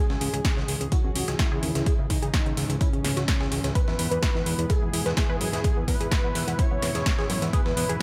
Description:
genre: progressive house.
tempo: 127 BPM.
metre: 4/4.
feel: straight.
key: C# minor.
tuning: A4 = 440 Hz.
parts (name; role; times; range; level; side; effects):
unison lead; melody; 0.0-8.0 s; C#4 to C#5; -34 LUFS; equal; sidechain pumping, tape echo.
warm analog pad; sustained chords; 0.0-8.0 s; G#2 to G#4; -36 LUFS; equal; chorus, sidechain pumping.
tight sequenced synth; arpeggios; 0.0-8.0 s; B3 to B4; -37 LUFS; equal; chorus, phaser, sidechain pumping, tape echo.
fat analog bass; bass; 0.1-8.0 s; C#2 to F#2; -32 LUFS; equal; sidechain pumping.
breakbeat sampler-style drum kit; drums; 0.1-7.9 s; hi-hat, snare drum; -40 LUFS; equal; high-pass filter on snare, studio reverb, high-pass filter on hats, high-pass filter on room.
deep house drum kit; drums; 0.2-8.0 s; hi-hat, snare drum; -33 LUFS; equal; overdrive, studio reverb.
electronic kick drum; drums; 0.4-7.6 s; none; -27 LUFS; equal; overdrive, studio reverb.
room: digital ambience.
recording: none.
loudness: -25 LUFS.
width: mono.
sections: 0.0-8.0 A section.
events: none.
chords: 0.0 C#m; 3.8 E.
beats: 0.45 0.92 1.39 | 1.86 2.34 2.81 3.28 | 3.75 4.23 4.70 5.17 | 5.64 6.12 6.59 7.06 | 7.53 8.01.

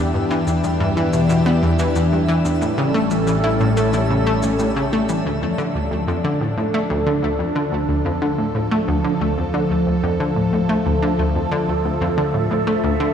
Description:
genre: ambient, sequencer-driven space music.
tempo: 91 BPM.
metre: 4/4.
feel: straight.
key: D minor from 5.3 s.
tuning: A4 = 440 Hz.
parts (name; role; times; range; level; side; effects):
phased analog pad; sustained chords; 0.0-13.1 s; E3 to E5; -20 LUFS; equal; phaser, chorus.
concert harp; arpeggios; 0.0-13.1 s; G3 to D5; -30 LUFS; right 1 dB; none.
analog pluck; riff; 0.0-13.1 s; D2 to E4; -20 LUFS; equal; chorus, ping-pong delay.
analog drone; bass; 0.4-13.1 s; A1 to E2; -29 LUFS; equal; chorus.
twinkling granular texture; texture; 0.0-5.3 s; E5; -33 LUFS; left 2 dB; built-in reverb.
bongos and shaker; percussion; 0.5-5.2 s; none; -35 LUFS; equal; ping-pong delay.
room: wet huge ambient reverb, RT60 8.0 s.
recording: played on a big sound system in a bare room, stone room reverb.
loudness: -17 LUFS.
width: side -8 dB against mid.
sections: 0.0-5.3 A section; 5.3-13.1 B section.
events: none.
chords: 0.0 Em7; 2.6 A7; 5.3 Dm.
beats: 0.64 1.30 1.96 | 2.62 3.27 3.94 4.59 | 5.25 5.91 6.57 7.23 | 7.89 8.55 9.21 9.87 | 10.53 11.19 11.85 12.51.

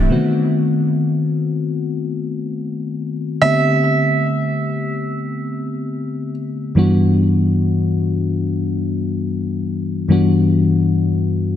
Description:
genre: R&B.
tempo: free time.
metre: none.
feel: none.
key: E minor.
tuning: A4 = 435 Hz.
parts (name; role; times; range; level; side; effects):
mellow FM electric piano; accompaniment; 0.0-11.6 s; G2 to G4; -16 LUFS; left 2 dB; chorus.
warm grand piano; melody; 3.4-6.3 s; E5; -20 LUFS; right 5 dB; tape echo.
room: moderate lush hall reverb, RT60 2.4 s.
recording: dense, heavily limited modern master.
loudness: -16 LUFS.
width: side -10 dB against mid.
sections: 0.1-11.6 A section.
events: none.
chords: 0.1 B7b9; 3.4 Am11; 6.8 Em9/G.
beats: free time.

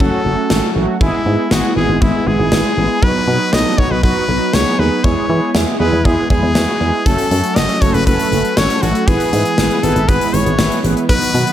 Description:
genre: synth-pop.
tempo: 119 BPM.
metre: 4/4.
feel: straight.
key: unclear.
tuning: A4 = 440 Hz.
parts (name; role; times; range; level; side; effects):
brilliant trumpet; melody; 0.0-11.5 s; E4 to D#5; -19 LUFS; left 2 dB; none.
mellow synth brass; accompaniment; 0.0-11.5 s; F#3 to C#5; -19 LUFS; right 1 dB; chorus.
string machine, violas; sustained chords; 0.0-11.5 s; D#3 to F#4; -22 LUFS; equal; ensemble chorus.
solid FM bass; bass; 0.0-11.4 s; F#1 to E3; -17 LUFS; equal; none.
gated 80s drum kit; drums; 0.0-11.5 s; hi-hat, kick drum, snare drum; -18 LUFS; equal; gated reverb.
room: light reverb, small room ambience.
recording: none.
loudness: -12 LUFS.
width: side -11 dB against mid.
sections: 0.0-11.5 A section.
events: none.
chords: 0.0 F#m; 1.0 E/G#; 3.0 B; 5.0 E; 7.1 F#m; 9.1 E/G#.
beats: 0.00 0.51 | 1.01 1.51 2.02 2.52 | 3.03 3.53 4.03 4.54 | 5.04 5.55 6.05 6.55 | 7.06 7.56 8.07 8.57 | 9.08 9.58 10.09 10.59 | 11.09.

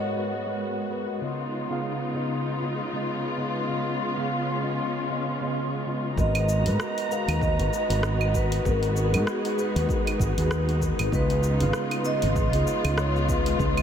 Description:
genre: sunset chillout.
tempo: 97 BPM.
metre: 4/4.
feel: swing 58% on 16ths.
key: G# dorian.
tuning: A4 = 441 Hz.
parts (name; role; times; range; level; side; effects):
vibraphone with medium mallets; melody; 0.0-0.9, 6.2-13.8 s; G#4 to E#5; -31 LUFS; right 2 dB; analog delay.
mellow tine electric piano; accompaniment; 0.0-13.8 s; C#3 to E#5; -31 LUFS; moving between left 5 dB and right 4 dB; auto-pan, tape echo.
dark symphonic string section; sustained chords; 0.0-13.8 s; G#2 to A#5; -29 LUFS; left 1 dB; none.
fretless electric bass; bass; 6.2-13.8 s; G#1 to G#2; -25 LUFS; equal; tube saturation.
deep house drum kit; drums; 6.2-13.8 s; claves, hi-hat, rim click, shaker; -33 LUFS; right 1 dB; low-pass filter on perc, small room reverb, low-pass filter on hats, low-pass filter on snare.
electronic kick drum; drums; 6.2-13.7 s; none; -28 LUFS; equal; small room reverb.
room: moderate huge ambient reverb, RT60 7.9 s.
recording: dreamy mix soaked in reverb.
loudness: -23 LUFS.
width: side -8 dB against mid.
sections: 0.0-6.2 A section; 6.2-13.8 B section.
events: none.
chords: 0.0 G#m9; 1.2 C#9; 6.2 G#m9; 11.1 C#9.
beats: 0.61 | 1.23 1.84 2.46 3.08 | 3.70 4.32 4.94 5.56 | 6.17 6.79 7.41 8.03 | 8.65 9.27 9.89 10.51 | 11.12 11.74 12.36 12.98 | 13.60.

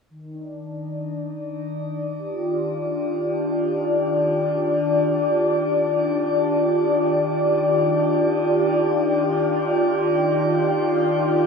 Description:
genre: ambient.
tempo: free time.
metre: none.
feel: none.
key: Eb major.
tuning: A4 = 440 Hz.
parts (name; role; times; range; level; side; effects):
warm analog pad; solo; 0.1-11.5 s; Eb3 to G4; -19 LUFS; left 1 dB; chorus, tape echo.
room: wet shimmer reverb, RT60 7.8 s.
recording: small room ambience.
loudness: -19 LUFS.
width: side -5 dB against mid.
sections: 0.1-11.5 A section.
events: none.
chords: 0.1 Ebmaj9.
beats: free time.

